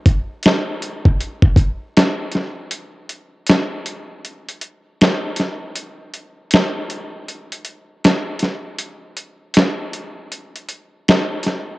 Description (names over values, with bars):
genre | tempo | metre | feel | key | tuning
hip hop | 79 BPM | 4/4 | swing 64% on 16ths | none | none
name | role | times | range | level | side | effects
dusty soul sampler-style drum kit | drums | 0.1-11.7 s | hi-hat, kick drum, snare drum | -15 LUFS | equal | overdrive, cassette tape
room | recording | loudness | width
moderate spring reverb, RT60 2.7 s | home recording on cassette | -16 LUFS | side -20 dB against mid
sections
0.0-2.7 A section; 2.7-11.8 B section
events
break 2.7-11.8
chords
none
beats
0.43 1.19 1.95 | 2.71 3.47 4.23 4.99 | 5.75 6.51 7.27 8.03 | 8.79 9.54 10.30 11.06